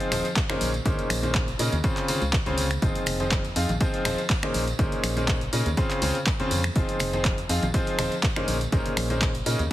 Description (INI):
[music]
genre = piano house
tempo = 122 BPM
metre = 4/4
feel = swing 54% on 16ths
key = unclear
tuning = A4 = 441 Hz
[part]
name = bright concert grand piano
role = riff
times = 0.0-9.6 s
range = Bb2 to F5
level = -27 LUFS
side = left 1 dB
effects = sidechain pumping, ping-pong delay
[part]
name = punchy analog drum machine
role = drums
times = 0.0-9.7 s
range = finger snaps, handclaps, hi-hat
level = -30 LUFS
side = equal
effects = none
[part]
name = tambourine and congas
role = percussion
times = 0.0-9.7 s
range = none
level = -34 LUFS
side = right 3 dB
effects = none
[part]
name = organ-like FM bass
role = bass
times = 0.1-9.7 s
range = Eb1 to Bb2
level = -28 LUFS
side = equal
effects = sidechain pumping
[part]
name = electronic kick drum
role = drums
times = 0.4-9.3 s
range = none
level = -26 LUFS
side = equal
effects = none
[sound]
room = studio reverb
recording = heavily compressed radio sound, multiband compression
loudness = -22 LUFS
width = side -14 dB against mid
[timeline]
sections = 0.0-9.7 A section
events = none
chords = 0.0 Fm7; 0.6 Bbm11; 1.8 Dbmaj7; 2.8 Fm7; 4.5 Bbm11; 5.8 Dbmaj7; 6.8 Fm7; 8.5 Bbm11